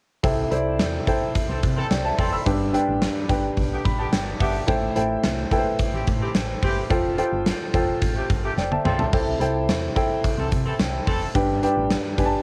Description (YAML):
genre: 1980s-style pop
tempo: 108 BPM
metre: 4/4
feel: straight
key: C major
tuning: A4 = 440 Hz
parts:
  - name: warm concert grand piano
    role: accompaniment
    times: 0.2-12.4 s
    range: G2 to E6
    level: -26 LUFS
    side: equal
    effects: cassette tape
  - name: solid FM bass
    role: bass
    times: 0.2-12.4 s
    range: F1 to C3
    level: -31 LUFS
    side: equal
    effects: none
  - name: gated 80s drum kit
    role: drums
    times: 0.2-12.3 s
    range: hi-hat, kick drum, snare drum, splash cymbal, toms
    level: -26 LUFS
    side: equal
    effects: none
  - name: mellow horn section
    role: stabs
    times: 1.5-11.2 s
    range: C3 to A4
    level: -34 LUFS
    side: equal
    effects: cassette tape, analog delay
room: moderate spring reverb, RT60 2.3 s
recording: home recording on cassette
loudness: -23 LUFS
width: mono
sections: 0.2-12.4 A section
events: grand piano fill 3.6-4.7; drum fill 8.6-9.1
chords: 0.2 C6; 2.5 G; 4.7 Am7; 6.9 Fadd9; 9.1 C6; 11.4 G